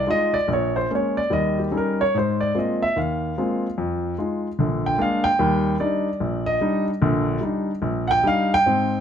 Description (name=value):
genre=solo jazz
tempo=147 BPM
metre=4/4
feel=swing 64% on 8ths, rubato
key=Eb major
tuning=A4 = 440 Hz
part: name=warm grand piano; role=solo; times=0.0-9.0 s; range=Bb1 to G5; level=-20 LUFS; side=equal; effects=none
room=moderate large studio reverb, RT60 1.4 s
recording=close, detailed microphones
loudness=-20 LUFS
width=side -8 dB against mid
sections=0.0-8.7 A section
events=grand piano solo 0.0-9.0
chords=0.5 Bbm7; 1.3 Eb7; 2.1 Ab69; 3.8 Fm7; 4.6 Bb7; 5.4 Ebmaj7